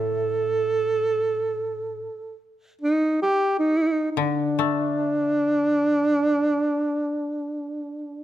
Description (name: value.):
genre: japanese traditional, Japanese chamber music.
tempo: free time.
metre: none.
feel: none.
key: unclear.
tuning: A4 = 440 Hz.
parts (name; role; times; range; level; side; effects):
mellow alto saxophone; melody; 0.0-8.2 s; D4 to A4; -22 LUFS; right 1 dB; none.
koto; accompaniment; 0.0-6.6 s; A2 to A3; -30 LUFS; left 10 dB; none.
room: light reverb.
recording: close, detailed microphones.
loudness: -21 LUFS.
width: side -12 dB against mid.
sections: 0.0-8.2 A section.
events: none.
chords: none.